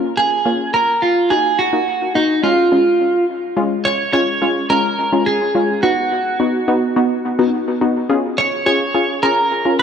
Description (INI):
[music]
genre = pop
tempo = 106 BPM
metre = 4/4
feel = straight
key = unclear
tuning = A4 = 440 Hz
[part]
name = warbly dusty pluck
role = accompaniment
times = 0.0-9.8 s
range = Ab3 to Bb4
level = -18 LUFS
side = left 2 dB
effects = chorus, dub echo
[part]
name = clean electric guitar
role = melody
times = 0.2-9.8 s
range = Eb4 to Db5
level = -16 LUFS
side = right 2 dB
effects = lush chorus, dub echo
[sound]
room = moderate echo chamber reverb, RT60 2.1 s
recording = echo-heavy mix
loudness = -14 LUFS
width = side -7 dB against mid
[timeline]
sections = 0.0-3.6 A section; 3.6-9.8 B section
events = none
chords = 0.0 Bbm; 1.3 Ebm; 2.4 Db; 5.8 B; 8.1 Db